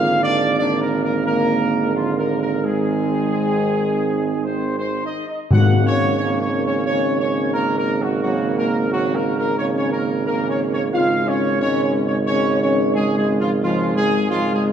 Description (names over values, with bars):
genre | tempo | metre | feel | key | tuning
classical | 88 BPM | 4/4 | straight | Ab major | A4 = 440 Hz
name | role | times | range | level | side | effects
dark trumpet section | melody | 0.0-14.6 s | F4 to Gb5 | -22 LUFS | right 1 dB | none
mellow French horn section | sustained chords | 0.0-14.7 s | F3 to Gb4 | -24 LUFS | left 4 dB | none
warm trombone section | sustained chords | 0.0-14.7 s | Db3 to C4 | -26 LUFS | right 3 dB | none
warm tuba | bass | 0.0-14.7 s | Ab1 | -21 LUFS | right 4 dB | none
timpani | percussion | 5.5-6.5 s | Ab2 | -18 LUFS | left 2 dB | none
room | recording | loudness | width
wet scoring stage reverb, RT60 1.6 s | dark, warm production | -17 LUFS | side -8 dB against mid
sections
0.0-5.5 A section; 5.5-14.7 B section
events
none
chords
0.0 Bb/Ab; 2.7 Ab; 5.5 Ab9sus4; 10.9 Db5/Ab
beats
0.58 1.26 1.95 | 2.65 3.37 4.09 4.80 | 5.52 6.20 6.88 7.55 | 8.22 8.90 9.58 10.26 | 10.94 11.62 12.29 12.96 | 13.63 14.29